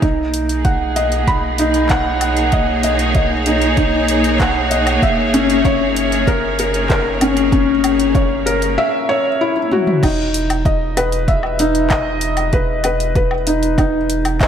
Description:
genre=piano and strings electronica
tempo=96 BPM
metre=4/4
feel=straight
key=E lydian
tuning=A4 = 440 Hz
part: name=rich studio string section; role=sustained chords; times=0.0-8.8 s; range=A#3 to C#5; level=-20 LUFS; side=equal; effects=sidechain pumping
part: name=felt-muted upright piano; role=riff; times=0.0-14.5 s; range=C#4 to B5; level=-16 LUFS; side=left 1 dB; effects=ping-pong delay
part: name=round analog bass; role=bass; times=0.0-14.5 s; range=E1 to B1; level=-22 LUFS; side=equal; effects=sidechain pumping
part: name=deep house drum kit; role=drums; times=0.0-14.5 s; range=crash cymbal, handclaps, hi-hat, toms, woodblock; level=-23 LUFS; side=equal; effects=none
part: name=electronic kick drum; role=drums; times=0.0-14.5 s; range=none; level=-18 LUFS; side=equal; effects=none
room=moderate scoring stage reverb, RT60 2.0 s, digital ambience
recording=none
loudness=-14 LUFS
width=side -8 dB against mid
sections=0.0-10.0 A section; 10.0-14.5 B section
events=build-up 0.0-10.0; drum fill 9.6-10.0; drop 10.0-14.5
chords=0.0 B; 5.0 F#7; 10.0 Emaj7(no3)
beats=| 0.03 0.65 1.28 1.90 | 2.53 3.15 3.78 4.40 | 5.03 5.65 6.28 6.90 | 7.53 8.15 8.78 9.40 | 10.03 10.65 11.28 11.90 | 12.53 13.15 13.78 14.40

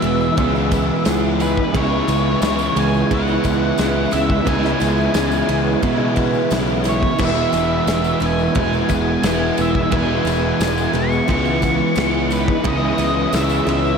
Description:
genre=rock, shoegaze and dream pop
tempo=88 BPM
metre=4/4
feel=straight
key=E major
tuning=A4 = 439 Hz
part: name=octave-fuzz lead guitar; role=melody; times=0.0-14.0 s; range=B4 to C#6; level=-25 LUFS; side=left 1 dB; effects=distortion, diffuse ambient delay
part: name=picked twelve-string acoustic guitar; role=arpeggios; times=0.0-14.0 s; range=E3 to E4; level=-26 LUFS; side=right 7 dB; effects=wide subtle chorus, diffuse ambient delay
part: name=direct-recorded clean electric guitar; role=riff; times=0.0-14.0 s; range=C#3 to G#4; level=-23 LUFS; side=right 8 dB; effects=reverse reverb
part: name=overdriven semi-hollow guitar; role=riff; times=0.0-14.0 s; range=E2 to E4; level=-23 LUFS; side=left 9 dB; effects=ensemble chorus
part: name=overdriven semi-hollow guitar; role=riff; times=0.0-14.0 s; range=C#3 to E4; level=-25 LUFS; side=equal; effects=none
part: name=fuzz picked electric bass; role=bass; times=0.0-13.9 s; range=E1 to B2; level=-22 LUFS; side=left 1 dB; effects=overdrive
part: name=loose indie drum kit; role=drums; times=0.0-13.8 s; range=crash cymbal, kick drum, ride cymbal, snare drum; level=-24 LUFS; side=equal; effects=none
part: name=tambourine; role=percussion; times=0.0-13.9 s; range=none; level=-39 LUFS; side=left 10 dB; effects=none
room=moderate huge ambient reverb, RT60 4.8 s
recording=dreamy mix soaked in reverb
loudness=-15 LUFS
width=side -6 dB against mid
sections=0.0-14.0 A section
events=none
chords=0.0 Emaj7; 1.7 C#m7; 7.2 E; 12.7 C#m7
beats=0.38 1.06 | 1.74 2.42 3.11 3.79 | 4.47 5.15 5.83 6.52 | 7.20 7.88 8.56 9.24 | 9.93 10.61 11.29 11.97 | 12.66 13.34

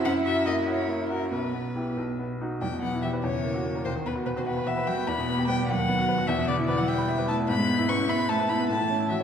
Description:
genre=quick classical-period movement for piano trio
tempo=98 BPM (dotted quarters)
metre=6/8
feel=rubato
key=E minor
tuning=A4 = 439 Hz
part: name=rich violin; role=melody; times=0.0-9.2 s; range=A#4 to C#6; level=-29 LUFS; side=left 3 dB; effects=none
part: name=dark cello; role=second line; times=0.0-9.2 s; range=B2 to E4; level=-30 LUFS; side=right 3 dB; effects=none
part: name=bright baby grand piano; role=accompaniment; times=0.0-9.2 s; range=B1 to B5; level=-27 LUFS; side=left 1 dB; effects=none
room=wet concert hall reverb, RT60 1.8 s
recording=recorded in a church or concert hall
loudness=-24 LUFS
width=side -8 dB against mid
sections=0.0-2.6 A section; 2.6-9.2 B section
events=none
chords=0.0 F#7; 1.3 Em/B; 2.0 B; 2.6 Em; 3.2 F#7/E; 3.9 B/D#; 5.1 Em; 5.7 B/D#; 6.3 Em; 7.5 E/G#; 8.7 F#m7/A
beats=| 0.05 0.67 | 1.31 1.97 | 2.61 3.23 | 3.85 4.47 | 5.08 5.68 | 6.28 6.88 | 7.48 8.09 | 8.69

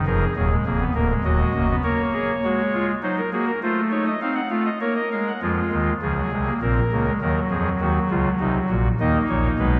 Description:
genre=classical, baroque-style 4-part fugue for pipe organ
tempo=101 BPM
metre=3/4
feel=straight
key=Eb minor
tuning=A4 = 440 Hz
part: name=pipe organ, soft reed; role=solo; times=0.0-9.8 s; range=D1 to Gb5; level=-22 LUFS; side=equal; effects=none
room=wet church reverb, RT60 2.9 s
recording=dark, warm production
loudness=-22 LUFS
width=mono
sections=0.0-5.4 A section; 5.4-9.8 B section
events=none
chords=0.1 Bb7; 1.2 Ebm; 1.8 Bbm; 3.0 Ebm/Gb; 3.6 F7/A; 4.8 Bbm; 5.4 Db; 6.6 Bbm; 7.2 Ebm; 8.4 Cdim; 9.0 D#5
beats=| 0.06 0.66 1.25 | 1.84 2.43 3.02 | 3.62 4.22 4.82 | 5.42 6.02 6.62 | 7.21 7.81 8.40 | 8.99 9.59

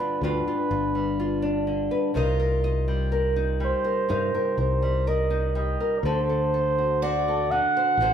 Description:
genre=acoustic folk-pop ballad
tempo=62 BPM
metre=4/4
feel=straight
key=unclear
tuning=A4 = 440 Hz
part: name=breathy flugelhorn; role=melody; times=0.0-8.1 s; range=Bb4 to F#5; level=-25 LUFS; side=right 3 dB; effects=none
part: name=nylon-string guitar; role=accompaniment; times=0.0-8.1 s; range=G2 to Eb5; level=-26 LUFS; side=left 1 dB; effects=none
part: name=fingered electric bass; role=bass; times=0.2-8.1 s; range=G1 to G2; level=-27 LUFS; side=left 1 dB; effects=none
part: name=picked steel-string acoustic guitar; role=arpeggios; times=2.2-8.1 s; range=F4 to F#4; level=-33 LUFS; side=left 1 dB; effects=none
room=wet large studio reverb, RT60 0.8 s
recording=band playing live in one room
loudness=-22 LUFS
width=side -8 dB against mid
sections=0.0-8.1 A section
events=none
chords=0.0 G7; 2.2 Cm7; 6.0 D7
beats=0.23 1.20 | 2.17 3.14 4.11 5.08 | 6.04 7.01 7.99

